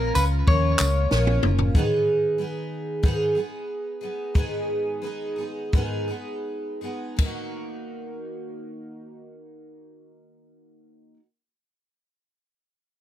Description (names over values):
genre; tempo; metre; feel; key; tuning
acoustic pop; 80-94 BPM; 4/4; straight; Eb minor; A4 = 440 Hz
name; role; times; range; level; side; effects
clean electric guitar; melody; 0.0-1.4 s; Bb4 to Db5; -26 LUFS; left 2 dB; digital delay
picked twelve-string acoustic guitar; accompaniment; 0.0-11.2 s; Ab2 to Ab4; -27 LUFS; right 1 dB; double-tracked left and right
vintage muted fingered electric bass; bass; 0.0-1.7 s; Gb1 to Eb2; -22 LUFS; equal; none
compact cocktail drum kit; drums; 0.2-7.4 s; handclaps, kick drum, ride cymbal, snare drum, tambourine, toms; -22 LUFS; equal; none
room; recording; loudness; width
light reverb; none; -22 LUFS; side -12 dB against mid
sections
0.0-1.7 A section; 1.7-7.2 B section; 7.2-10.2 C section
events
drum fill 1.1-1.7; slowing down 1.7-7.2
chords
0.0 Bbm; 1.7 Abm; 7.2 Ebm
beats
0.47 1.11 | 1.74 2.38 3.03 3.69 | 4.35 5.03 5.73 6.45 | 7.19 7.94 8.69 9.45